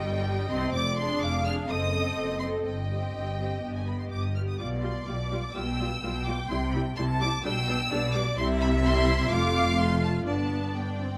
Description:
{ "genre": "quick classical-period movement for string orchestra", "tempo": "126 BPM", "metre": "4/4", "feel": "rubato", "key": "C minor", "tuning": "A4 = 437 Hz", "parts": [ { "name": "warm symphonic violin section", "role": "melody", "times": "0.0-11.2 s", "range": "G5 to F6", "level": "-36 LUFS", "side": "equal", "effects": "none" }, { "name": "warm studio violin section", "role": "second line", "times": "0.0-11.2 s", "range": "D5 to A5", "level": "-36 LUFS", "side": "equal", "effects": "none" }, { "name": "rich symphonic viola section", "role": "accompaniment", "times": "0.0-11.2 s", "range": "G3 to A4", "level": "-35 LUFS", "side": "equal", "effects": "none" }, { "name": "rich symphonic double bass section", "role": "bass", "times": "0.0-11.2 s", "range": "F1 to C2", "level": "-34 LUFS", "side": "equal", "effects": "none" }, { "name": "warm symphonic cello section", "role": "bass", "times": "0.0-11.2 s", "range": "F2 to C3", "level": "-34 LUFS", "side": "equal", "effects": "none" } ], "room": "light reverb", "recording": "close, detailed microphones", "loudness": "-28 LUFS", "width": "mono", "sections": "0.0-11.2 A section", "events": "none", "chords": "0.0 Cm/G; 0.7 Ddim/F; 1.7 F#dim7; 2.6 Cm/G; 3.6 G; 4.6 G7/B; 6.5 C; 7.4 G/B; 8.4 C; 9.3 F; 10.3 G" }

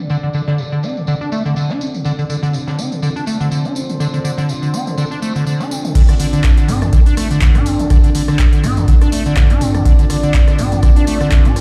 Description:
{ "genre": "acid house", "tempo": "123 BPM", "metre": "4/4", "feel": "swing 55% on 16ths", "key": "D minor", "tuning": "A4 = 441 Hz", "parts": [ { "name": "dark analog pad", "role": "sustained chords", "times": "0.0-11.6 s", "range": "C4 to D5", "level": "-28 LUFS", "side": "equal", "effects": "chorus, sidechain pumping" }, { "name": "acid bass, square", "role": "riff", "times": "0.0-11.6 s", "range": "C3 to D4", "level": "-21 LUFS", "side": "equal", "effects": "overdrive, analog chorus, tape echo" }, { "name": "warbly tape-like pad", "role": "texture", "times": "0.0-11.6 s", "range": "D4 to D5", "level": "-29 LUFS", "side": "equal", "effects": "chorus, built-in reverb, phaser, sidechain pumping" }, { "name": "deep reggae drum kit", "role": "drums", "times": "0.1-11.6 s", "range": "hi-hat, snare drum, tambourine", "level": "-38 LUFS", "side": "equal", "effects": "sidechain pumping on hats, high-pass filter on hats, low-pass filter on hats, high-pass filter on snare, low-pass filter on snare, sidechain pumping on perc, high-pass filter on perc, low-pass filter on perc, high-pass filter on room, low-pass filter on room" }, { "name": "punchy analog drum machine", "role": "drums", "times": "0.1-11.6 s", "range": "crash cymbal, handclaps, hi-hat, rim click, tambourine, toms", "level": "-26 LUFS", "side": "equal", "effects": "overdrive, low-pass filter on hats, low-pass filter on perc, low-pass filter on snare, low-pass filter on toms, low-pass filter on cymbals" }, { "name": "electronic kick drum", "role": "drums", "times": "6.0-11.4 s", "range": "none", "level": "-14 LUFS", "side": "equal", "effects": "none" } ], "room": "light reverb", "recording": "played on a big sound system in a bare room, large studio reverb", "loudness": "-15 LUFS", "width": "mono", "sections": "0.0-6.0 A section; 6.0-11.6 B section", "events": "filter sweep on analog synth pad 0.0-6.0; drop 6.0-11.6", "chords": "0.0 Dm7" }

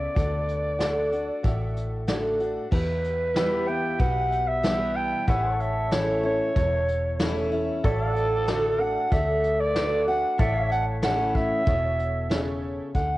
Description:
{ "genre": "honky-tonk and classic country", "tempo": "94 BPM", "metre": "4/4", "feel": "straight", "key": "D major", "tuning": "A4 = 440 Hz", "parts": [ { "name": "growling clarinet", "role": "melody", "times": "0.0-13.2 s", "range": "A4 to G5", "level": "-26 LUFS", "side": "right 1 dB", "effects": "cassette tape" }, { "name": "picked steel-string acoustic guitar", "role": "accompaniment", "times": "0.0-13.2 s", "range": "E2 to F#4", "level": "-29 LUFS", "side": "left 1 dB", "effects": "cassette tape" }, { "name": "tack piano", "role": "accompaniment", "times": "0.0-12.9 s", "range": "E4 to E5", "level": "-37 LUFS", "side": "right 3 dB", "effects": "cassette tape" }, { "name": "vintage muted fingered electric bass", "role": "bass", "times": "0.0-13.2 s", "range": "E1 to E2", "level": "-30 LUFS", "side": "equal", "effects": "none" }, { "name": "vintage brush drum kit", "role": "drums", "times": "0.2-13.1 s", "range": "crash cymbal, hi-hat, kick drum, snare drum", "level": "-27 LUFS", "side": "equal", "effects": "none" }, { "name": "pedal steel guitar", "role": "sustained chords", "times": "3.4-12.9 s", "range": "G4 to F#5", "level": "-35 LUFS", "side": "equal", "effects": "cassette tape" } ], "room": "moderate spring reverb, RT60 2.1 s", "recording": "home recording on cassette", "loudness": "-22 LUFS", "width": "side -17 dB against mid", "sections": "0.0-2.7 A section; 2.7-13.0 B section", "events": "none", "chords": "0.2 D; 2.7 Em; 5.3 A; 7.8 D/A; 10.4 A" }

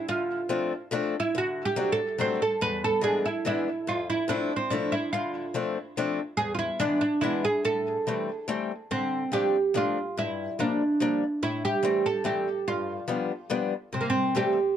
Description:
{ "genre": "musette", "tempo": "143 BPM", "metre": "3/4", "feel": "straight", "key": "A minor, D minor from 8.9 s", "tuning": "A4 = 441 Hz", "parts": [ { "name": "oud", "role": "melody", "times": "0.0-14.8 s", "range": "Bb3 to C5", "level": "-26 LUFS", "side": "right 2 dB", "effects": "tape echo" }, { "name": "picked acoustic archtop guitar", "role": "accompaniment", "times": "0.1-14.6 s", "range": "E2 to E4", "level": "-30 LUFS", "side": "left 5 dB", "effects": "none" } ], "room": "moderate studio ambience, RT60 0.5 s", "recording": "dark, warm production", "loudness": "-25 LUFS", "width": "side -9 dB against mid", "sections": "0.0-8.9 A section; 8.9-14.8 B section", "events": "none", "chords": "0.1 Dm7; 1.3 D7; 2.6 E7; 3.9 Fmaj7; 5.1 Dm7; 6.4 E7; 7.6 Am7; 8.9 Dm7; 10.2 Gm7; 11.4 Am7; 12.7 G7; 13.9 C6" }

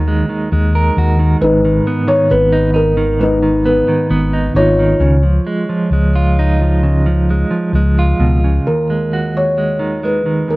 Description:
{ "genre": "acoustic folk-pop ballad", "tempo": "66 BPM", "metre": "4/4", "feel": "straight", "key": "Eb minor", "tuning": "A4 = 442 Hz", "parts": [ { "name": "clean electric guitar", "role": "accompaniment", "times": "0.0-10.6 s", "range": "Eb2 to Bb4", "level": "-16 LUFS", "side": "right 2 dB", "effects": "tremolo" }, { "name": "fingered electric bass", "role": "bass", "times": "0.0-8.6 s", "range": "Ab1 to Eb2", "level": "-14 LUFS", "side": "equal", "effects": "none" }, { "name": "felt-muted upright piano", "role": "melody", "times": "1.4-10.6 s", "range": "Eb4 to Db5", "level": "-16 LUFS", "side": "left 1 dB", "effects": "none" } ], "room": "little or no reverb", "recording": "dry, close 1970s-style studio recording", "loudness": "-12 LUFS", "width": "side -21 dB against mid", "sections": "0.0-8.7 A section; 8.7-10.6 A section", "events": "none", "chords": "0.0 Ebm; 1.4 Abm; 5.0 Dbadd9; 8.7 Ebmadd9" }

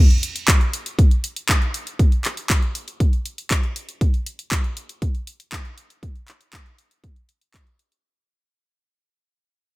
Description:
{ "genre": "italo disco", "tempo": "119 BPM", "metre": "4/4", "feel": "straight", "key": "none", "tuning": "none", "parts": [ { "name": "house drum kit", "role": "drums", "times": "0.1-8.0 s", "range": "handclaps, hi-hat", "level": "-23 LUFS", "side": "equal", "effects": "none" }, { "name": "electronic kick drum", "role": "drums", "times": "0.5-7.6 s", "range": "none", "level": "-17 LUFS", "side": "equal", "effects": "none" } ], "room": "little or no reverb", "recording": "none", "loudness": "-19 LUFS", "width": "side -21 dB against mid", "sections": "0.0-8.0 A section", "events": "fade-out 0.0-8.0", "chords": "none" }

